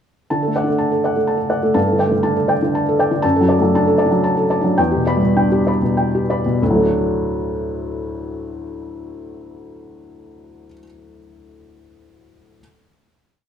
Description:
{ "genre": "neoclassical minimalist piano", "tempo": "93-125 BPM", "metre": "3/4", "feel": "rubato", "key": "D major", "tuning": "A4 = 439 Hz", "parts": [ { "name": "felt-muted upright piano", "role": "solo", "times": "0.3-12.6 s", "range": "D2 to B5", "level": "-16 LUFS", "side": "equal", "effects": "none" } ], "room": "wet large studio reverb, RT60 1.4 s", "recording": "band playing live in one room", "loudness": "-15 LUFS", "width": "side -8 dB against mid", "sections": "0.3-6.6 A section; 6.6-10.4 final chord", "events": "slowing down 2.5-6.6", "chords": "0.3 D; 1.8 Gsus2; 3.2 D/F#; 4.8 Em7; 6.6 D", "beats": "| 0.30 0.80 1.28 | 1.77 2.26 2.75 | 3.23 3.72 4.23 | 4.78 5.36 5.97 | 6.60 7.23 7.87 | 8.50 9.12 9.75" }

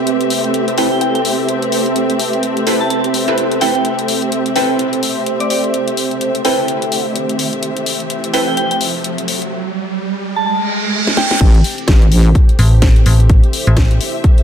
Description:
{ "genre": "bass house", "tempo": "127 BPM", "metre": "4/4", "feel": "swing 59% on 16ths", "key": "A minor", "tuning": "A4 = 441 Hz", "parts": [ { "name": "dark analog pad", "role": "sustained chords", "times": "0.0-14.4 s", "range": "C4 to E5", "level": "-20 LUFS", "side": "right 2 dB", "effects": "chorus, sidechain pumping" }, { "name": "muted studio string section", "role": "texture", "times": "0.0-14.4 s", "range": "A3 to E5", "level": "-21 LUFS", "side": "equal", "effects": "sidechain pumping" }, { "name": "house drum kit", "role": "drums", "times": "0.1-14.4 s", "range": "crash cymbal, hi-hat, snare drum", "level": "-21 LUFS", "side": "left 3 dB", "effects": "none" }, { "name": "soft synth bell", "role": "melody", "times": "0.8-11.4 s", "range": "D5 to A5", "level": "-21 LUFS", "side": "equal", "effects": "chorus, phaser, ping-pong delay" }, { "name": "orchestra-hit-like synth stab", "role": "stabs", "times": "0.8-8.5 s", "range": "C4 to B4", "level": "-20 LUFS", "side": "right 2 dB", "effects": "built-in reverb, sidechain pumping, ping-pong delay" }, { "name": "riser and reverse cymbal", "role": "sound effects", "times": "5.9-11.4 s", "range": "none", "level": "-21 LUFS", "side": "right 3 dB", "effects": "none" }, { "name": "wobble bass", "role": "bass", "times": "11.4-12.3 s", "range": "A1", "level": "-10 LUFS", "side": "equal", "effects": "chorus, tube saturation, sidechain pumping" }, { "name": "electronic kick drum", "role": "drums", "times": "11.4-14.4 s", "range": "none", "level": "-10 LUFS", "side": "equal", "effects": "none" }, { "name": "metallic FM bass", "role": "bass", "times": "12.6-14.0 s", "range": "A1", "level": "-10 LUFS", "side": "equal", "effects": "tube saturation, sidechain pumping" } ], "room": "light reverb", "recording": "none", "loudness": "-12 LUFS", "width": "side -8 dB against mid", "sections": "0.0-11.4 A section; 11.4-14.4 B section", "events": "build-up 0.0-11.4; riser 5.9-11.4; reverse cymbal 10.5-11.4; drum fill 11.1-11.4; drop 11.4-14.4", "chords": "0.0 Amadd9; 11.4 Am", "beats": "| 0.07 0.54 1.01 1.49 | 1.96 2.43 2.90 3.38 | 3.85 4.32 4.79 5.26 | 5.74 6.21 6.68 7.16 | 7.63 8.10 8.57 9.04 | 9.52 9.99 10.46 10.93 | 11.41 11.88 12.35 12.82 | 13.30 13.77 14.24" }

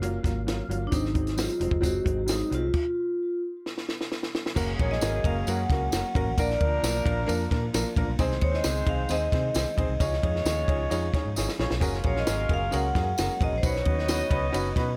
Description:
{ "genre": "uptempo 1960s-style soul", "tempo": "132 BPM", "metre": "4/4", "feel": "straight", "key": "F# major", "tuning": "A4 = 440 Hz", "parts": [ { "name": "warm upright piano", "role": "accompaniment", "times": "0.0-14.9 s", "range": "F#3 to C#5", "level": "-34 LUFS", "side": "equal", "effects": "none" }, { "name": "tonewheel organ", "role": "sustained chords", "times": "0.0-15.0 s", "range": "D#3 to E#5", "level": "-42 LUFS", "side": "equal", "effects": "none" }, { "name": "vintage muted fingered electric bass", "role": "bass", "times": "0.0-14.9 s", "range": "E#1 to B#2", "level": "-32 LUFS", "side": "equal", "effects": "tube saturation" }, { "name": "compact cocktail drum kit", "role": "drums", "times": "0.0-14.9 s", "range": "crash cymbal, hi-hat, kick drum, ride cymbal, snare drum, splash cymbal", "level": "-31 LUFS", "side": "equal", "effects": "none" }, { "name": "vibraphone with medium hard mallets", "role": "melody", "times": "0.9-14.5 s", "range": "D4 to F#5", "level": "-32 LUFS", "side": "equal", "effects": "tape echo" }, { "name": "tambourine", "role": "percussion", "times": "0.9-14.6 s", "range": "none", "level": "-40 LUFS", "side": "equal", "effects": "none" }, { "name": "dark horn section", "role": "second line", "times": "4.6-15.0 s", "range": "C#3 to E#5", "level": "-38 LUFS", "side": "equal", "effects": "none" } ], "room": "light reverb", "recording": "none", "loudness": "-27 LUFS", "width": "mono", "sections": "0.0-4.6 A section; 4.6-15.0 B section", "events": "stop 2.7-4.6; drum fill 3.7-4.6, 11.4-11.8", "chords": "0.0 F#maj7; 0.9 G#7; 2.7 N.C.; 4.6 F#; 6.4 A#; 8.2 G#/B#; 10.0 C#add9; 11.8 F#add9; 13.6 Badd9", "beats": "0.02 0.47 | 0.93 1.38 1.84 2.29 | 2.75 3.20 3.65 4.11 | 4.56 5.01 5.47 5.92 | 6.38 6.83 7.28 7.74 | 8.19 8.64 9.10 9.55 | 10.00 10.46 10.91 11.36 | 11.82 12.27 12.72 13.18 | 13.63 14.08 14.53" }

